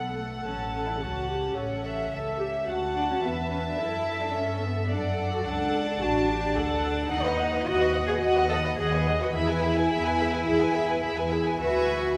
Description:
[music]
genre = quick classical-period movement for string orchestra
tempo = 108 BPM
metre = 4/4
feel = rubato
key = D major, E major from 7.1 s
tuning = A4 = 441 Hz
[part]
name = warm symphonic violin section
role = melody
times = 0.0-12.1 s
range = D#5 to B5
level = -38 LUFS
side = equal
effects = none
[part]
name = warm symphonic violin section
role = second line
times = 0.0-12.1 s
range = C#5 to A5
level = -33 LUFS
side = equal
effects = none
[part]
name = dark symphonic viola section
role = accompaniment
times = 0.0-12.1 s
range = F#4 to D#5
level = -33 LUFS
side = equal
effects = none
[part]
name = warm studio cello section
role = bass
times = 0.0-12.2 s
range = A3 to A4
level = -32 LUFS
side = equal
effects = none
[part]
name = warm symphonic double bass section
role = bass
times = 0.0-12.2 s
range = A1 to G2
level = -34 LUFS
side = equal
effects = none
[sound]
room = wet concert hall reverb, RT60 2.0 s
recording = recorded in a church or concert hall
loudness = -27 LUFS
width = mono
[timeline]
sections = 0.0-12.2 A section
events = none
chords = 0.4 A7; 2.7 D; 7.1 B/D#; 9.4 E; 11.6 E7/D

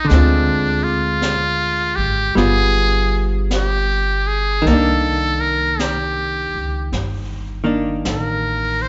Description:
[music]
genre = jazz ballad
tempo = 53 BPM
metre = 4/4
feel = swing 66% on 8ths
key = unclear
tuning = A4 = 440 Hz
[part]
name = trumpet with metal mute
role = melody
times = 0.0-8.9 s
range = D4 to C5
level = -22 LUFS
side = equal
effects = none
[part]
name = archtop guitar, miked and amplified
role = accompaniment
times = 0.0-8.9 s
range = D3 to A4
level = -24 LUFS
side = equal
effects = none
[part]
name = upright bass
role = bass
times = 0.0-8.9 s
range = G1 to D2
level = -23 LUFS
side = equal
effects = none
[part]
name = jazz brush drum kit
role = drums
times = 0.1-8.9 s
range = brushed snare drum, hi-hat, snare drum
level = -32 LUFS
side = equal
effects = none
[sound]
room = moderate concert hall reverb, RT60 1.9 s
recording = recorded in a church or concert hall, nothing above 7.8 kHz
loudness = -18 LUFS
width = mono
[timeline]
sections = 0.0-8.9 A section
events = none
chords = 0.1 Dm7b5; 2.4 G7; 4.6 Cm9

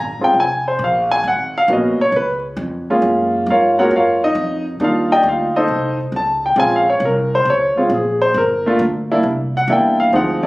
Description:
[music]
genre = jazz piano trio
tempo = 135 BPM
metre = 4/4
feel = swing 68% on 8ths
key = unclear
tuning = A4 = 440 Hz
[part]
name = warm concert grand piano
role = melody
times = 0.0-10.5 s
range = F3 to Bb5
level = -14 LUFS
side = equal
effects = plate reverb
[part]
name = upright bass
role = bass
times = 0.0-10.5 s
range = F1 to Ab2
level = -25 LUFS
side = equal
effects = none
[sound]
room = moderate studio reverb, RT60 0.5 s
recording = recorded on a phone in the room, club reverb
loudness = -14 LUFS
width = side -20 dB against mid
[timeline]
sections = 0.0-10.5 A section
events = grand piano solo 0.0-10.5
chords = 0.0 Bb7sus2; 1.2 Abm11; 2.1 Db; 3.0 Gbmaj9; 4.8 Cm9 (rootless); 5.7 Cm6; 6.6 Bbm7; 8.4 Gm; 9.2 C9

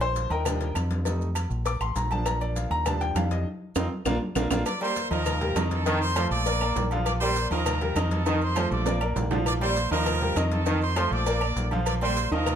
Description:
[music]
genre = latin, salsa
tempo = 200 BPM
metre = 4/4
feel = straight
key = Bb major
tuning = A4 = 440 Hz
[part]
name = bright upright piano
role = accompaniment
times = 0.0-12.6 s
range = Eb3 to D6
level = -29 LUFS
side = left 1 dB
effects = none
[part]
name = deep dub fingered electric bass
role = bass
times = 0.0-12.6 s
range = A1 to F2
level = -28 LUFS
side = equal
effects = none
[part]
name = agogo bells and timbales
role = percussion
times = 0.0-12.6 s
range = none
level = -35 LUFS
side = right 6 dB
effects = none
[part]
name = congas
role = percussion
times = 0.0-12.6 s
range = none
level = -37 LUFS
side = equal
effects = none
[part]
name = maracas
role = percussion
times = 0.0-12.6 s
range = none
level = -42 LUFS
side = right 9 dB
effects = none
[part]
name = cowbell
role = percussion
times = 0.2-12.6 s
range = none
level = -36 LUFS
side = left 9 dB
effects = none
[part]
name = claves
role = percussion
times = 0.5-12.6 s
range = none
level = -41 LUFS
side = left 4 dB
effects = none
[part]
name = bright trumpet section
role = melody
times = 4.7-12.6 s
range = A4 to D6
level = -30 LUFS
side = right 2 dB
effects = none
[part]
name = bright trombone section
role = second line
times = 4.8-12.6 s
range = D3 to G3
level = -31 LUFS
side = right 2 dB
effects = none
[sound]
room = light reverb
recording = none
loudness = -23 LUFS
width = side -9 dB against mid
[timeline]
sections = 0.0-4.7 A section; 4.7-12.6 B section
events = upright piano solo 0.0-4.7; band accent 3.5-4.7; drum fill 3.8-4.7, 8.6-9.5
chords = 0.5 Ebmaj7; 1.1 F7; 1.7 Bb; 2.9 Ebmaj7; 3.5 F5; 4.1 Bb; 5.3 Eb; 5.9 F7; 6.5 Bb; 7.7 Eb; 8.3 F7; 8.9 Bb; 10.1 Eb; 10.7 F7; 11.3 Bb

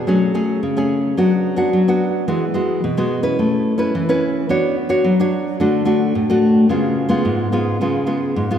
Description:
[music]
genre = samba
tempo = 109 BPM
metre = 4/4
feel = straight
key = F# minor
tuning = A4 = 440 Hz
[part]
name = nylon-string guitar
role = solo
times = 0.0-8.6 s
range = G#2 to C#5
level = -15 LUFS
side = equal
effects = none
[sound]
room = wet church reverb, RT60 2.9 s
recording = recorded in a church or concert hall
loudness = -15 LUFS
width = side -9 dB against mid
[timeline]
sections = 0.1-8.6 A section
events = none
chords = 0.1 F#madd9; 1.2 Bm/F#; 2.3 Eadd9; 3.4 Aadd9; 4.5 Bmadd9; 5.6 D; 6.7 C#7

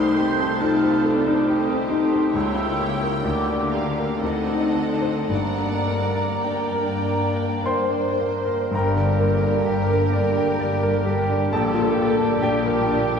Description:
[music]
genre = classical, romantic movement for piano and orchestra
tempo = 48-69 BPM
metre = 3/4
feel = rubato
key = G minor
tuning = A4 = 440 Hz
[part]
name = clear baby grand piano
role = melody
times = 0.0-13.2 s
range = Bb1 to C6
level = -22 LUFS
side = left 2 dB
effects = none
[part]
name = rich studio violin section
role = melody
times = 0.0-13.2 s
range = G4 to C6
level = -36 LUFS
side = right 3 dB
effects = none
[part]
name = mellow hollow flute section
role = second line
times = 0.0-13.2 s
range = G4 to G6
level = -29 LUFS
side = right 3 dB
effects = none
[part]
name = warm symphonic violin section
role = second line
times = 0.0-13.2 s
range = G4 to Eb5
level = -30 LUFS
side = right 1 dB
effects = none
[part]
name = rich symphonic viola section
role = accompaniment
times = 0.0-13.2 s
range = D3 to G4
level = -30 LUFS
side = right 1 dB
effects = none
[part]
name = mellow French horn section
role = sustained chords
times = 0.0-13.2 s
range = A3 to E4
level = -30 LUFS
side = equal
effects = none
[part]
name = clear symphonic double bass section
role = bass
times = 0.0-13.2 s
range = G1 to D2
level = -31 LUFS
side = left 1 dB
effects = none
[part]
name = warm symphonic cello section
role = bass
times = 0.0-13.2 s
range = G2 to D3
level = -28 LUFS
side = left 1 dB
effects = none
[part]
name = clear oboe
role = second line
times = 8.7-13.2 s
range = G4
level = -34 LUFS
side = left 2 dB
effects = none
[part]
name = warm clarinet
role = second line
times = 8.7-13.2 s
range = D4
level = -34 LUFS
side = left 1 dB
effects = none
[part]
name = dark bassoon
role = accompaniment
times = 8.7-13.2 s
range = G3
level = -32 LUFS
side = right 3 dB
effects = none
[sound]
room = wet cathedral reverb, RT60 6.6 s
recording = in a vast, echoing space, studio ambience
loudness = -19 LUFS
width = side -6 dB against mid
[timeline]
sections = 0.0-8.7 A section; 8.7-13.2 B section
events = none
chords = 0.0 Am7b5/C; 2.3 C#dim7; 3.2 Gm/D; 4.2 D7b9; 5.3 Gm; 11.5 Gm/Bb

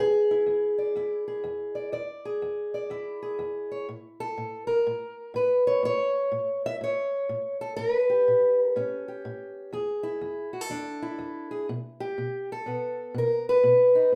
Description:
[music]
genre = acoustic country blues, solo or duo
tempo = 123 BPM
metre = 4/4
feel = swing 64% on 8ths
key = E mixolydian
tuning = A4 = 441 Hz
[part]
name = fingerpicked steel-string acoustic guitar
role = solo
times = 0.0-14.2 s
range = E2 to E5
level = -27 LUFS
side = equal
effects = none
[sound]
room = wet studio reverb, RT60 0.6 s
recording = rough home demo mix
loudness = -27 LUFS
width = mono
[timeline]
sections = 0.0-14.2 A section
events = none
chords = 0.0 E7; 3.9 A7; 9.7 E7; 11.7 B7(no3)

